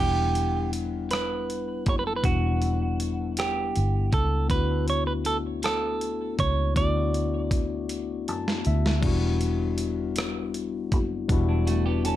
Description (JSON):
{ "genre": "slow six-eight R&B", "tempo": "53 BPM (dotted quarters)", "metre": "6/8", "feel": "straight", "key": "E dorian", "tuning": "A4 = 440 Hz", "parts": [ { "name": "semi-hollow electric guitar", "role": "melody", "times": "0.0-8.6 s", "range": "F#4 to D5", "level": "-29 LUFS", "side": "right 4 dB", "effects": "none" }, { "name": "overdriven tine electric piano", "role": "accompaniment", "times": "0.0-12.2 s", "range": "G3 to A5", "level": "-30 LUFS", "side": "left 7 dB", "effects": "none" }, { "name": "vintage muted fingered electric bass", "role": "bass", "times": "0.0-12.2 s", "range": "E1 to F#2", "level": "-27 LUFS", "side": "equal", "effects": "none" }, { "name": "dusty soul sampler-style drum kit", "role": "drums", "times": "0.4-12.2 s", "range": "crash cymbal, hi-hat, kick drum, rim click, snare drum", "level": "-28 LUFS", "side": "equal", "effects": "none" }, { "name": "semi-hollow electric guitar", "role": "second line", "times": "11.5-12.2 s", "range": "F#3 to A4", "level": "-30 LUFS", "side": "right 7 dB", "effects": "spring reverb" } ], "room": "light reverb", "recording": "none", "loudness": "-23 LUFS", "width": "side -13 dB against mid", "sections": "0.0-12.2 A section", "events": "drum fill 7.9-9.0; tine electric piano fill 7.9-9.0", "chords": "0.0 Em9; 4.5 D69; 9.0 Em9" }